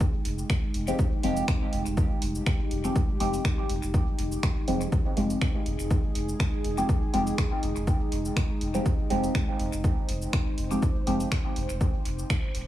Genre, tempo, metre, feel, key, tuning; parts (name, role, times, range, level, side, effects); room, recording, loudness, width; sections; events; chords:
dub techno; 122 BPM; 4/4; swing 54% on 16ths; F minor; A4 = 440 Hz
dark analog pad; sustained chords; 0.0-12.7 s; Ab3 to C5; -34 LUFS; equal; chorus, sidechain pumping
soft dub sub bass; bass; 0.0-12.7 s; Eb1 to F1; -32 LUFS; equal; sidechain pumping
electronic kick drum; drums; 0.0-12.4 s; -26 LUFS; equal; overdrive
punchy analog drum machine; drums; 0.0-12.7 s; finger snaps, hi-hat, shaker; -36 LUFS; equal; overdrive, dub echo
deep mellow chord stab; stabs; 0.9-11.3 s; F3 to G4; -30 LUFS; equal; chorus, phaser, dub echo
light reverb, digital ambience; echo-heavy mix, studio ambience; -24 LUFS; side -13 dB against mid
0.0-12.7 A section
band accent 12.3
0.0 Fmadd9